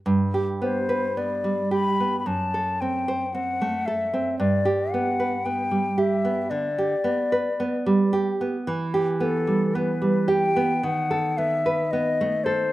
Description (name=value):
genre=romantic duo for flute and classical guitar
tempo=56 BPM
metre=4/4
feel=rubato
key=G major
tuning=A4 = 440 Hz
part: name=nylon-string guitar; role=accompaniment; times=0.1-12.7 s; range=F#2 to C5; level=-23 LUFS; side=right 2 dB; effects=none
part: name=hollow concert flute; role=melody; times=0.6-12.7 s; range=A4 to B5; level=-25 LUFS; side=left 3 dB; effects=slapback echo
room=light reverb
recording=recorded outdoors, with no room sound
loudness=-21 LUFS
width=side -16 dB against mid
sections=0.1-12.7 A section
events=none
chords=0.1 G; 2.3 F#m7b5; 4.4 G; 8.7 Em; 10.8 B7/D#